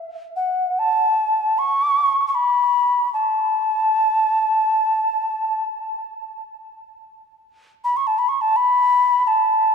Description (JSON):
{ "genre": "world meditative, free-time meditation music", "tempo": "free time", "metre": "none", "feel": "none", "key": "A major pentatonic", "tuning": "A4 = 435 Hz", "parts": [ { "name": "mellow alto ocarina", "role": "solo", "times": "0.4-9.7 s", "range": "F#5 to C#6", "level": "-17 LUFS", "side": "equal", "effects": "ping-pong delay" } ], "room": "wet church reverb, RT60 3.4 s", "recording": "dark, warm production", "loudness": "-17 LUFS", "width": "side -6 dB against mid", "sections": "0.0-9.7 A section", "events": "none", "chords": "none", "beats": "free time" }